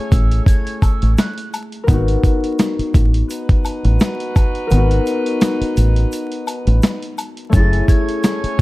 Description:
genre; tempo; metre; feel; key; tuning
hip hop, boom-bap hip-hop; 85 BPM; 4/4; swing 54% on 16ths; unclear; A4 = 439 Hz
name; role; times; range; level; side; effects
breathy mellow jazz flute; melody; 0.0-1.5, 7.5-8.5 s; E6 to A6; -28 LUFS; right 2 dB; high-pass filter, low-pass filter, slapback echo
concert harp; accompaniment; 0.0-8.6 s; A3 to A#4; -22 LUFS; left 3 dB; cassette tape, high-pass filter, low-pass filter
warm horn section; stabs; 0.0-8.6 s; C#4 to C#5; -26 LUFS; right 1 dB; high-pass filter, low-pass filter, slapback echo
deep dub fingered electric bass; bass; 0.1-8.6 s; F#1 to A1; -14 LUFS; equal; none
dusty soul sampler-style drum kit; drums; 0.1-8.6 s; hi-hat, kick drum, snare drum; -15 LUFS; equal; none
tube shaker and woodblock; percussion; 0.1-8.6 s; none; -31 LUFS; left 4 dB; none
room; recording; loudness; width
studio reverb; dark, warm production, vinyl crackle; -14 LUFS; side -20 dB against mid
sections
0.0-8.6 A section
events
kick muted 4.7-7.5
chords
0.0 F#m9 (rootless); 1.9 G#m9 (rootless); 7.5 F#m9

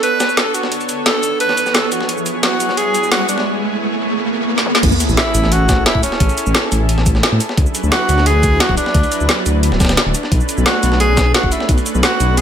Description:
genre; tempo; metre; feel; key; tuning
liquid drum and bass; 175 BPM; 4/4; straight; unclear; A4 = 440 Hz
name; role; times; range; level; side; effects
clear tenor saxophone; melody; 0.0-12.4 s; C#4 to B4; -18 LUFS; equal; digital delay
lush unison pad; sustained chords; 0.0-12.4 s; F#3 to C#5; -22 LUFS; right 2 dB; chorus, sidechain pumping
breakbeat sampler-style drum kit; drums; 0.0-12.4 s; hi-hat, snare drum; -22 LUFS; equal; high-pass filter on hats, high-pass filter on snare
garage drum kit; drums; 0.0-12.4 s; crash cymbal, hi-hat, shaker, snare drum, toms; -19 LUFS; equal; overdrive, high-pass filter on hats, high-pass filter on perc, high-pass filter on snare, high-pass filter on toms, high-pass filter on cymbals
riser and sub drop; sound effects; 1.6-6.2 s; none; -21 LUFS; equal; none
dark detuned saw bass; bass; 4.8-12.4 s; D1 to A2; -16 LUFS; equal; none
electronic kick drum; drums; 4.8-11.8 s; none; -16 LUFS; equal; overdrive
room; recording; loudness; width
light reverb, digital ambience; none; -13 LUFS; side -9 dB against mid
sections
0.0-4.8 A section; 4.8-12.4 B section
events
build-up 0.0-4.8; riser 1.6-4.8; drum fill 4.6; drop 4.8-12.4; impact 4.8-6.2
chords
0.0 Bm9; 1.9 C#m7; 4.8 Amaj7; 7.6 D69; 10.3 Bm9

